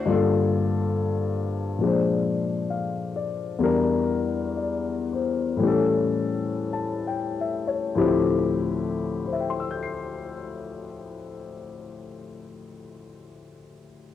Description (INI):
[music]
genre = jazz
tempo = 47-71 BPM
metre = 4/4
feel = swing 67% on 8ths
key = D minor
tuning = A4 = 441 Hz
[part]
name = warm grand piano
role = accompaniment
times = 0.0-14.1 s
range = D2 to C7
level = -24 LUFS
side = left 4 dB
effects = cassette tape
[sound]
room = light reverb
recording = home recording on cassette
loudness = -23 LUFS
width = side -11 dB against mid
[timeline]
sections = 0.1-8.0 A section; 8.0-13.0 B section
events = slowing down 0.1-8.0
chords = 0.1 Gm7; 1.8 Bb7; 3.6 Em7b5; 5.6 A7; 8.0 Dm11